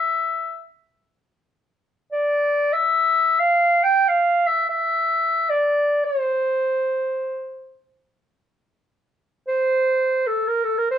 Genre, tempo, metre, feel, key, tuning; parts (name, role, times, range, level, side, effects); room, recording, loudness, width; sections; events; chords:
Turkish makam ensemble; free time; A4 = 440 Hz
warm clarinet; solo; 0.0-11.0 s; A4 to G5; -18 LUFS; equal
light reverb; band playing live in one room, nothing above 10.6 kHz; -18 LUFS; side -10 dB against mid
0.0-11.0 A section